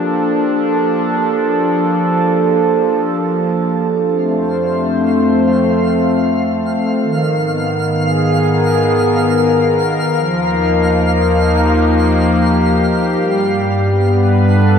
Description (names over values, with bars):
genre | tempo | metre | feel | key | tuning
ambient | free time | none | none | unclear | A4 = 440 Hz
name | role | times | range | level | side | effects
warm analog pad | sustained chords | 0.0-14.8 s | Eb3 to C5 | -13 LUFS | equal | chorus, shimmer reverb
round analog bass | bass | 3.9-14.8 s | Eb2 to Ab2 | -19 LUFS | equal | none
twinkling granular texture | texture | 4.2-14.8 s | F5 | -22 LUFS | right 1 dB | built-in reverb, shimmer reverb
room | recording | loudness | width
wet plate reverb, RT60 2.3 s | none | -12 LUFS | side -7 dB against mid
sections
0.0-3.9 A section; 3.9-14.8 B section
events
fade-in on analog synth bass 3.9-14.8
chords
0.0 Gm9; 3.9 F; 7.0 Abmadd9; 10.1 Ebadd9; 13.2 Gadd9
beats
free time